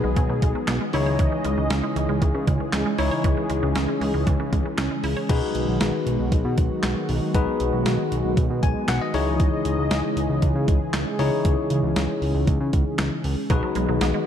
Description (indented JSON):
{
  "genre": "synth-pop",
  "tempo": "117 BPM",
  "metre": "4/4",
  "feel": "straight",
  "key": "B major",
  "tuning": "A4 = 440 Hz",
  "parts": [
    { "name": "bell-like tine electric piano", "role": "accompaniment", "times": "0.0-14.3 s", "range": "D#4 to G#5", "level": "-27 LUFS", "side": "left 5 dB", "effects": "lush chorus" },
    { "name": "warm analog pad", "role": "sustained chords", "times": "0.0-14.3 s", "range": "C#3 to D#5", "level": "-27 LUFS", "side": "equal", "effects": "chorus" },
    { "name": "resonant blip pluck", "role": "arpeggios", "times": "0.0-5.2, 13.5-14.2 s", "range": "E3 to C#5", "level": "-30 LUFS", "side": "right 5 dB", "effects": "chorus, phaser, slapback echo" },
    { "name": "fat analog bass", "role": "bass", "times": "0.0-14.1 s", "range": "B1 to C#3", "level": "-25 LUFS", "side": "equal", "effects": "none" },
    { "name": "clean 12-bit digital drum machine", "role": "drums", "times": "0.2-14.1 s", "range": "crash cymbal, handclaps, hi-hat, kick drum, snare drum", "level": "-25 LUFS", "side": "equal", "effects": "none" }
  ],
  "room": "moderate concert hall reverb, RT60 2.3 s",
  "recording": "dark, warm production",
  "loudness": "-20 LUFS",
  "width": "side -9 dB against mid",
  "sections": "0.0-5.3 A section; 5.3-14.3 A section",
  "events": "tine electric piano fill 8.4-9.4",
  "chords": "0.0 B6; 0.9 C#madd9; 5.3 B6; 9.1 C#madd9; 13.5 B6",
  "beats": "0.17 0.68 | 1.19 1.70 2.22 2.73 | 3.24 3.76 4.27 4.78 | 5.29 5.81 6.32 6.83 | 7.34 7.86 8.37 8.88 | 9.40 9.91 10.42 10.94 | 11.45 11.96 12.47 12.99 | 13.50 14.01"
}